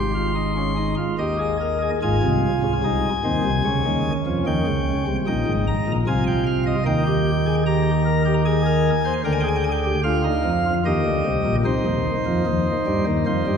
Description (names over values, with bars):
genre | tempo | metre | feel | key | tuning
classical, baroque-style 3-part fugue for pipe organ | 74 BPM | 3/4 | straight | Ab major | A4 = 441 Hz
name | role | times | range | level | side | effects
pipe organ, sparkling flutes | solo | 0.0-13.6 s | Ab1 to C6 | -19 LUFS | equal | none
room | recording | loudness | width
wet concert hall reverb, RT60 2.5 s | heard from further back in the room | -19 LUFS | side -7 dB against mid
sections
0.0-2.0 A section; 2.0-11.7 B section; 11.7-13.6 C section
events
none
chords
0.0 Ab; 1.2 Eb; 2.0 Ab; 3.6 Db; 4.5 Eb7; 6.1 Ab/C; 6.9 Eb; 8.4 Ab/Eb; 9.2 Bb7/D; 10.9 Eb; 11.7 Cm